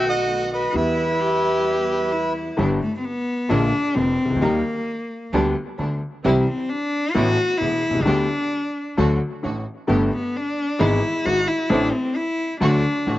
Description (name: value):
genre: tango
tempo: 132 BPM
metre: 4/4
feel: rubato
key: G major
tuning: A4 = 435 Hz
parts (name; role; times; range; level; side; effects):
- bandoneon; melody; 0.0-2.3 s; B4 to F#5; -22 LUFS; right 2 dB; slapback echo
- warm cello; second line; 0.0-13.2 s; A3 to G4; -23 LUFS; left 1 dB; slapback echo
- clear upright piano; accompaniment; 0.0-13.2 s; E1 to A4; -23 LUFS; left 2 dB; slapback echo
- rich studio string section; stabs; 0.0-13.2 s; D#3 to G4; -29 LUFS; right 3 dB; slapback echo
- upright bass; bass; 0.0-13.2 s; E1 to E2; -26 LUFS; right 1 dB; none
room: little or no reverb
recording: recorded outdoors, with no room sound, nothing above 7.8 kHz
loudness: -19 LUFS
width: side -15 dB against mid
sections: 0.0-2.6 A section; 2.6-13.2 B section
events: cello solo 2.6-13.2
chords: 0.0 B7; 0.7 Em; 2.6 G; 3.5 Bb7; 4.4 Eb; 5.3 G/D; 6.2 C; 7.2 Asus2; 8.1 G/D; 9.0 D; 9.9 Gadd9; 10.8 E/G#; 11.7 Am; 12.6 D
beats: 0.29 | 0.75 1.21 1.67 2.13 | 2.59 3.05 3.50 3.96 | 4.42 4.88 5.33 5.79 | 6.24 6.70 7.15 7.61 | 8.06 8.52 8.98 9.44 | 9.89 10.35 10.81 11.26 | 11.71 12.17 12.62 13.07